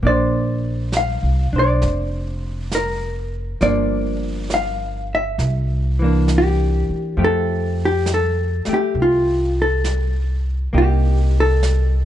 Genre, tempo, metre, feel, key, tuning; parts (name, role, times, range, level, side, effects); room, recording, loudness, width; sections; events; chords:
jazz ballad; 67 BPM; 4/4; swing 68% on 8ths; F major; A4 = 440 Hz
hollow-body jazz guitar; melody; 0.0-12.1 s; F4 to F5; -21 LUFS; left 1 dB
vintage hollow-body jazz guitar; accompaniment; 0.0-12.1 s; E3 to C5; -24 LUFS; right 1 dB
upright bass; bass; 0.0-12.1 s; F1 to F2; -19 LUFS; equal
jazz brush drum kit; drums; 0.0-12.1 s; brushed snare drum, hi-hat, snare drum; -32 LUFS; right 2 dB
little or no reverb; dark, warm production, nothing above 10.8 kHz; -17 LUFS; side -11 dB against mid
0.0-12.1 A section
0.0 Bbadd9; 3.6 Gm7; 5.4 C9; 7.2 Fadd9; 10.7 Cm7